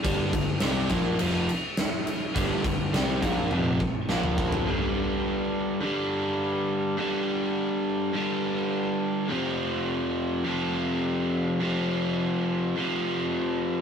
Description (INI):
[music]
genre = classic rock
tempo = 104 BPM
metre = 4/4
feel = straight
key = unclear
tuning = A4 = 440 Hz
[part]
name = biting overdriven guitar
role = riff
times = 0.0-13.8 s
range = F2 to C4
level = -26 LUFS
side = equal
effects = none
[part]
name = fuzz picked electric bass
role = bass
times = 0.0-4.6 s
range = F1 to C2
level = -29 LUFS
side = equal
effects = overdrive
[part]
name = huge arena drum kit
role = drums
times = 0.0-4.7 s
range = crash cymbal, kick drum, snare drum, toms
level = -28 LUFS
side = equal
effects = none
[sound]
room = wet studio reverb, RT60 0.6 s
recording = rough rehearsal-room recording, warm saturation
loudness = -24 LUFS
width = side -7 dB against mid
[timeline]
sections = 0.0-4.7 A section; 4.7-13.8 B section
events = drum fill 3.5-4.7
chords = 0.0 G5; 4.1 Bb5; 4.7 G5; 9.3 F5